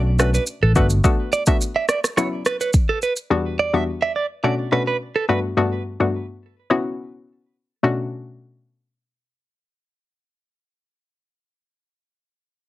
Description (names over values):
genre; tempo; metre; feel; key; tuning
afrobeats; 106 BPM; 4/4; straight; B minor; A4 = 440 Hz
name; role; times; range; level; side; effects
hollow square pluck; accompaniment; 0.0-11.6 s; E2 to F#4; -21 LUFS; left 3 dB; chorus
fingered electric bass; bass; 0.0-1.0 s; G1 to B1; -17 LUFS; equal; none
direct-recorded clean electric guitar; riff; 0.2-5.4 s; A4 to E5; -22 LUFS; right 4 dB; digital delay
deep house drum kit; drums; 0.2-3.3 s; kick drum, rim click, shaker; -19 LUFS; equal; none
room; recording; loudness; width
light reverb; heavily compressed radio sound; -18 LUFS; side -15 dB against mid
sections
0.0-7.8 A section; 7.8-10.1 B section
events
none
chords
0.0 Bm7; 0.8 Gmaj7; 2.2 F#7sus4; 3.3 Em7; 4.4 Bm7; 5.3 Gmaj7; 6.7 F#7sus4; 7.8 Bm7